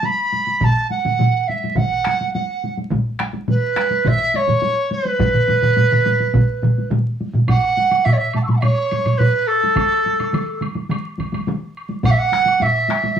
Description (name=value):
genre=japanese traditional, taiko drum ensemble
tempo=105 BPM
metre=4/4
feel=straight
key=B suspended pentatonic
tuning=A4 = 439 Hz
part: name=large dizi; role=melody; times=0.0-13.2 s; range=A4 to E6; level=-18 LUFS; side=right 3 dB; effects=none
part: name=taiko ensemble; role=percussion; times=0.0-13.2 s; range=none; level=-26 LUFS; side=equal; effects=none
part: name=taiko ensemble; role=percussion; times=0.6-13.0 s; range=none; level=-18 LUFS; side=equal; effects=none
part: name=taiko ensemble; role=percussion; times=0.6-11.6 s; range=none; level=-25 LUFS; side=right 2 dB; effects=none
part: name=taiko ensemble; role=percussion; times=0.6-12.2 s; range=none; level=-25 LUFS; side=right 1 dB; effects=none
part: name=woodblock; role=percussion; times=7.5-13.0 s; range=none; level=-32 LUFS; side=equal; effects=none
room=wet studio ambience, RT60 0.5 s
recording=vinyl crackle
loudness=-16 LUFS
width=side -8 dB against mid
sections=0.0-7.5 A section; 7.5-13.2 B section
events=none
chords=none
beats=0.04 | 0.62 1.19 1.77 2.34 | 2.91 3.49 4.06 4.63 | 5.20 5.78 6.35 6.92 | 7.49 8.06 8.63 9.20 | 9.77 10.34 10.91 11.48 | 12.04 12.61 13.18